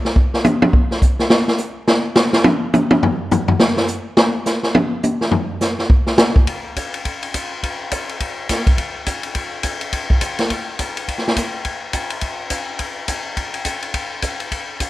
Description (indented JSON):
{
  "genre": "jazz",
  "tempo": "209 BPM",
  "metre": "4/4",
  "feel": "swing 60% on 8ths",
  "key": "none",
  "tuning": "none",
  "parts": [
    { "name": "swinging big-band drum kit", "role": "drums", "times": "0.0-14.9 s", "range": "hi-hat, kick drum, ride cymbal, snare drum, toms", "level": "-16 LUFS", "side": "equal", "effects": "none" }
  ],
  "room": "light reverb",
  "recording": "worn, warbling old tape, cassette tape, warbly pitch drift",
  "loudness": "-16 LUFS",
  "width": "side -16 dB against mid",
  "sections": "0.0-6.5 A section; 6.5-14.9 B section",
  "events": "drum solo 0.0-6.5",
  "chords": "none"
}